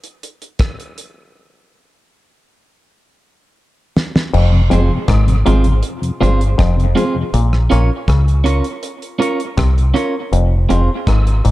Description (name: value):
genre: dub reggae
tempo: 80 BPM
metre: 4/4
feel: straight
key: F minor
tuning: A4 = 440 Hz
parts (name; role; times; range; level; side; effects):
- damped 70s drum kit; drums; 0.0-11.5 s; crash cymbal, hi-hat, kick drum, rim click, snare drum; -20 LUFS; equal; none
- muted clav; riff; 4.3-11.5 s; F2 to Db3; -22 LUFS; left 5 dB; overdrive, dub echo
- deep dub fingered electric bass; bass; 4.3-11.5 s; F1 to Db2; -13 LUFS; equal; none
- mellow tonewheel organ; accompaniment; 4.5-7.2 s; F2 to C4; -21 LUFS; left 2 dB; chorus vibrato, slow rotary speaker, dub echo
- clean electric guitar; accompaniment; 4.7-10.9 s; C4 to Db5; -20 LUFS; right 3 dB; dub echo
room: light reverb, small room ambience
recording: dark, warm production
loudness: -13 LUFS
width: side -16 dB against mid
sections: 0.0-4.3 A section; 4.3-11.5 B section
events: break 0.0-4.3; drum fill 3.6-4.3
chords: 0.0 N.C.; 4.3 Fm; 7.3 Bbm; 10.3 Fm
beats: 0.60 | 1.35 2.10 2.85 3.60 | 4.34 5.09 5.84 6.59 | 7.34 8.08 8.83 9.58 | 10.33 11.07